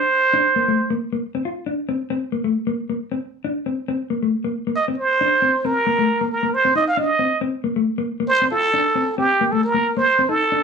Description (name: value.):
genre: highlife.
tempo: 136 BPM.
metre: 4/4.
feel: swing 54% on 16ths.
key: unclear.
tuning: A4 = 440 Hz.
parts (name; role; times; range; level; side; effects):
trumpet with plunger mute; melody; 0.0-1.0, 4.8-10.6 s; G4 to F5; -17 LUFS; right 3 dB; none.
mellow electric guitar; accompaniment; 0.3-10.6 s; A3 to F4; -22 LUFS; left 4 dB; none.
room: moderate studio reverb, RT60 0.6 s.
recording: band playing live in one room.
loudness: -18 LUFS.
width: side -5 dB against mid.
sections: 0.0-10.6 A section.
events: none.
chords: 0.3 Bb; 1.2 F5; 2.1 Am; 3.0 Csus2; 3.9 Am; 4.8 Csus2; 5.6 Bbsus2; 6.5 Cmadd9; 7.4 Am; 8.3 F; 9.2 Am7; 10.1 Cm69.